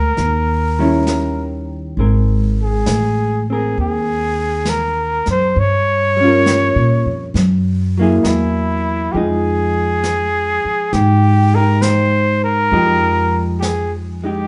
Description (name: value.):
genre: jazz ballad.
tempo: 67 BPM.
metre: 4/4.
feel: swing 68% on 8ths.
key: F minor.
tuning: A4 = 440 Hz.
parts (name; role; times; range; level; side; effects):
trumpet with straight mute; melody; 0.0-14.5 s; Eb4 to Db5; -20 LUFS; equal; none.
vintage hollow-body jazz guitar; accompaniment; 0.0-14.5 s; Eb3 to Bb4; -22 LUFS; equal; none.
upright bass; bass; 0.0-14.5 s; Ab1 to Bb2; -20 LUFS; equal; none.
jazz brush drum kit; drums; 0.2-14.5 s; brushed snare drum, hi-hat, snare drum; -28 LUFS; equal; none.
room: wet large studio reverb, RT60 0.9 s.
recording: heard from further back in the room, nothing above 10.6 kHz.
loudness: -16 LUFS.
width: mono.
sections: 0.0-14.5 A section.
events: none.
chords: 0.2 Eb7b9; 2.0 Abadd9; 5.6 Gm7b5; 7.3 Gb9; 9.1 Fm9.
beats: 0.17 1.07 | 1.97 2.86 3.76 4.66 | 5.55 6.45 7.35 8.24 | 9.14 10.03 10.93 11.83 | 12.72 13.62.